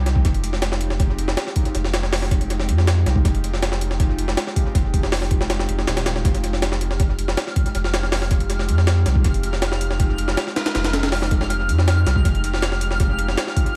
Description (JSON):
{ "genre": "drum and bass, jungle", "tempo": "160 BPM", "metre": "4/4", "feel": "straight", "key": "F minor", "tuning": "A4 = 440 Hz", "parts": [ { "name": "soft dub sub bass", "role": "bass", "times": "0.0-13.4 s", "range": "Eb1 to F2", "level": "-24 LUFS", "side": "equal", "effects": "none" }, { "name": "jungle sampler-style drum kit", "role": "drums", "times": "0.1-13.7 s", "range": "hi-hat, kick drum, snare drum", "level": "-23 LUFS", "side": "equal", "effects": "overdrive, studio reverb, tape echo" }, { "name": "twinkling granular texture", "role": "texture", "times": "6.9-13.8 s", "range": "F6", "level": "-32 LUFS", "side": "equal", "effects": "built-in reverb" } ], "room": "light reverb, digital ambience", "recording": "echo-heavy mix, vinyl crackle", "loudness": "-20 LUFS", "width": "mono", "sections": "0.0-13.8 A section", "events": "none", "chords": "0.0 Fm7" }